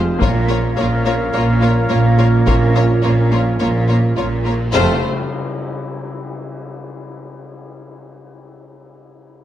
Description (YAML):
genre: cinematic, epic orchestral film score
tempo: 106 BPM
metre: 4/4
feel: straight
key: unclear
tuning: A4 = 440 Hz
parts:
  - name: mellow trombone section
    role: sustained chords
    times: 0.0-5.0 s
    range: Bb2 to Bb3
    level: -24 LUFS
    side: right 3 dB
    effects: none
  - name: mellow woodwind section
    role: sustained chords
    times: 0.0-5.0 s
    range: Bb3 to F5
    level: -25 LUFS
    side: left 1 dB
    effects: none
  - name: warm French horn section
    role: sustained chords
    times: 0.0-5.0 s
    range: C4 to F4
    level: -25 LUFS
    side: left 1 dB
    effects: none
  - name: clear symphonic cello section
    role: bass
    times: 0.0-5.1 s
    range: F2 to Bb2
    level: -18 LUFS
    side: right 1 dB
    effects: none
  - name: clear symphonic double bass section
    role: bass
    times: 0.0-5.1 s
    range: F1 to Bb1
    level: -20 LUFS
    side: right 2 dB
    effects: none
  - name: bright symphonic violin section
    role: melody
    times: 0.2-5.1 s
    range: C5 to Db5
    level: -26 LUFS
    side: left 6 dB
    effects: none
  - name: clear symphonic violin section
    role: second line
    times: 0.2-5.0 s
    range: F4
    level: -28 LUFS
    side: left 2 dB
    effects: none
  - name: clear symphonic viola section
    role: accompaniment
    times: 0.2-5.1 s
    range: A3 to Bb3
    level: -25 LUFS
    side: equal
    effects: none
  - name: taiko ensemble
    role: drums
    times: 0.2-3.0 s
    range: none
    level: -19 LUFS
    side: left 1 dB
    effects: none
  - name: cymbal swell and tam-tam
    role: percussion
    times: 2.5-7.0 s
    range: none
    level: -28 LUFS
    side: left 3 dB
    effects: none
room: moderate scoring stage reverb, RT60 1.9 s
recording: dark, warm production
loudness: -14 LUFS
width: side -12 dB against mid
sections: 0.0-4.7 A section; 4.7-7.0 B section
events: band accent 4.7-5.3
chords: 0.2 Bbm; 4.7 F